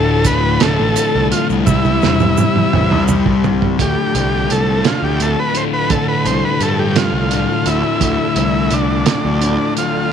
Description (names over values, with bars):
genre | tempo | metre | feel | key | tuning
psychedelic rock | 57 BPM (dotted quarters) | 6/8 | straight | D minor | A4 = 440 Hz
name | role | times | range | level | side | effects
combo organ | melody | 0.0-10.1 s | D4 to C5 | -18 LUFS | right 1 dB | slapback echo
tonewheel organ | sustained chords | 0.0-10.1 s | E3 to A4 | -25 LUFS | right 16 dB | slow rotary speaker, chorus vibrato
thick fuzz guitar | riff | 0.0-10.1 s | D2 to C4 | -19 LUFS | left 11 dB | distortion, phaser
fuzz picked electric bass | bass | 0.0-9.6 s | D1 to D3 | -19 LUFS | right 1 dB | overdrive
cloth-damped thuddy drum kit | drums | 0.2-9.9 s | hi-hat, kick drum, snare drum, toms | -18 LUFS | right 6 dB | none
egg shaker | percussion | 0.2-3.5 s | none | -30 LUFS | right 21 dB | none
room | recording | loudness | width
studio ambience | 1960s-style stereo with parts hard left and right | -13 LUFS | side -8 dB against mid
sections
0.0-3.8 A section; 3.8-10.1 B section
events
drum fill 1.7-3.8; transistor combo organ solo 3.8-10.1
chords
0.0 Dm; 1.7 C; 3.8 Dm